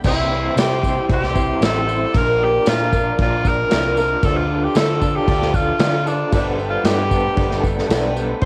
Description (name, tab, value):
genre	folk rock and heartland rock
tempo	115 BPM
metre	4/4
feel	straight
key	unclear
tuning	A4 = 439 Hz
part	picked twelve-string acoustic guitar	accompaniment	0.0-8.4 s	G2 to Bb4	-28 LUFS	equal	none
part	tonewheel organ	sustained chords	0.0-8.4 s	G4 to D6	-35 LUFS	equal	none
part	electric guitar through a small old amp	riff	0.0-8.5 s	Bb2 to C5	-26 LUFS	equal	tremolo, cassette tape
part	hollow-body short-scale fingered electric bass	bass	0.0-8.5 s	G1 to D3	-26 LUFS	equal	none
part	unplugged drum kit	drums	0.0-8.5 s	crash cymbal, kick drum, snare drum	-23 LUFS	equal	cassette tape
part	tambourine	percussion	0.0-8.5 s	none	-42 LUFS	equal	none
part	bright tenor saxophone	melody	0.1-8.5 s	D4 to C5	-24 LUFS	equal	none
room	light reverb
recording	home recording on cassette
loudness	-18 LUFS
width	mono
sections	0.0-8.5 A section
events	none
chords	0.0 C; 2.1 Bb; 4.2 Dm; 6.3 Gadd9